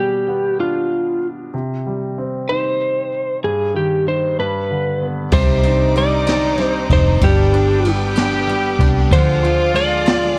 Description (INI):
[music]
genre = six-eight pop ballad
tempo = 63 BPM (dotted quarters)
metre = 6/8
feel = straight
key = C harmonic minor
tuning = A4 = 440 Hz
[part]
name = lightly driven lead guitar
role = melody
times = 0.0-10.4 s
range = F4 to D5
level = -21 LUFS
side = equal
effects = none
[part]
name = clear baby grand piano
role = accompaniment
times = 0.0-10.4 s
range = G2 to F4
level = -25 LUFS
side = equal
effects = none
[part]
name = muted French horn section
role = second line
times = 5.3-10.4 s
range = D4 to G4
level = -25 LUFS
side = equal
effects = digital delay
[part]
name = bright studio string section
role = sustained chords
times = 5.3-10.4 s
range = Ab4 to D6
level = -31 LUFS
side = equal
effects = none
[part]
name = picked steel-string acoustic guitar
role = arpeggios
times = 5.3-10.4 s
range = F3 to D4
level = -29 LUFS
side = equal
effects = none
[part]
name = vintage muted fingered electric bass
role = bass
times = 5.3-10.4 s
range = F1 to D2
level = -21 LUFS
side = equal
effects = none
[part]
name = jazz brush drum kit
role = drums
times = 5.3-10.2 s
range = crash cymbal, kick drum, ride cymbal, snare drum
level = -22 LUFS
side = equal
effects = none
[sound]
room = light reverb, studio ambience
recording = worn, warbling old tape, cassette tape, warbly pitch drift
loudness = -17 LUFS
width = mono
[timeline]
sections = 0.0-5.3 A section; 5.3-10.4 B section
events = none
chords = 0.0 G/B; 1.5 Cm; 3.4 Abmaj7/G; 4.4 G; 5.3 Cmadd9; 7.2 G; 9.1 Ddim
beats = 0.58 | 1.53 2.48 | 3.43 4.38 | 5.33 6.27 | 7.22 8.17 | 9.11 10.06